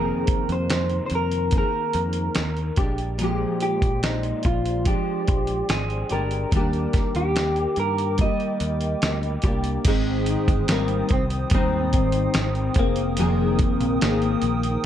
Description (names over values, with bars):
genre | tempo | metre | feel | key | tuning
indie pop, bedroom pop | 72 BPM | 4/4 | straight | unclear | A4 = 440 Hz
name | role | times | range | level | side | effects
electric guitar through a small old amp | melody | 0.0-14.9 s | Ab3 to Eb5 | -27 LUFS | equal | lush chorus, analog delay
nylon-string guitar | accompaniment | 0.0-14.9 s | F2 to Ab4 | -26 LUFS | left 2 dB | ensemble chorus, vibrato effect
picked electric bass | bass | 0.0-14.8 s | F1 to G2 | -26 LUFS | equal | none
dusty soul sampler-style drum kit | drums | 0.3-14.8 s | crash cymbal, hi-hat, kick drum, snare drum | -24 LUFS | equal | none
hollow soft pad | sustained chords | 3.2-14.9 s | Ab3 to Eb6 | -34 LUFS | right 3 dB | chorus
room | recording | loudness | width
light reverb | dark, warm production | -20 LUFS | side -10 dB against mid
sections
0.0-9.9 A section; 9.9-14.9 B section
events
none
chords
0.0 Fm7; 2.8 Bb13; 6.5 Ebmaj7; 9.9 Abmaj7; 12.8 Fm11